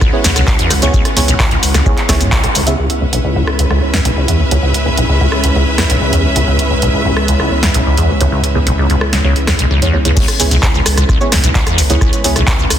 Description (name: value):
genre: acid house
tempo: 130 BPM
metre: 4/4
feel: straight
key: C# minor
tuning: A4 = 438 Hz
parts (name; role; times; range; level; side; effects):
- string machine, full ensemble; sustained chords; 0.0-12.8 s; G#3 to B4; -20 LUFS; equal; ensemble chorus, sidechain pumping
- liquid acid bass; riff; 0.0-12.7 s; B1 to C#3; -15 LUFS; equal; tube saturation, wide subtle chorus, cassette tape, digital delay
- electronic kick drum; drums; 0.0-2.4, 10.2-12.6 s; none; -15 LUFS; equal; none
- punchy analog drum machine; drums; 0.0-12.8 s; crash cymbal, handclaps, hi-hat, rim click, shaker, snare drum; -17 LUFS; equal; none
- rich symphonic string section; texture; 0.0-10.2 s; C#4 to F#5; -20 LUFS; equal; sidechain pumping
- deep mellow chord stab; stabs; 0.1-12.4 s; B3 to E5; -22 LUFS; right 3 dB; chorus, digital delay
- warm sub bass; bass; 0.2-12.8 s; C#2; -17 LUFS; equal; tube saturation, sidechain pumping
room: light reverb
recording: dense, heavily limited modern master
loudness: -10 LUFS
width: side -10 dB against mid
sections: 0.0-2.8 A section; 2.8-10.2 B section; 10.2-12.8 A section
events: drop 0.0-2.8, 10.2-12.8; band accent 2.3; filter sweep on acid bass 2.8-10.2; filter sweep on string machine 2.8-10.2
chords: 0.0 C#m7